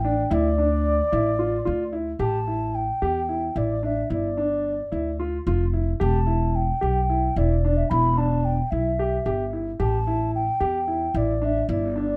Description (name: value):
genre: contemporary instrumental, chamber music in an uneven meter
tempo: 221 BPM (eighths)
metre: 7/8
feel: straight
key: unclear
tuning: A4 = 440 Hz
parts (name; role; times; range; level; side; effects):
- mellow hollow baroque flute; melody; 0.0-12.2 s; D5 to B5; -29 LUFS; equal; none
- dark concert grand piano; arpeggios; 0.0-12.2 s; D4 to G4; -29 LUFS; equal; none
- upright bass; bass; 0.0-12.2 s; E1 to E2; -27 LUFS; equal; none
room: light reverb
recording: dark, warm production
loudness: -24 LUFS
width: mono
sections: 0.0-2.2 A section; 2.2-12.2 B section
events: none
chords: 0.3 Dmadd9; 2.2 A5; 4.1 G5; 6.0 Em7; 9.8 A5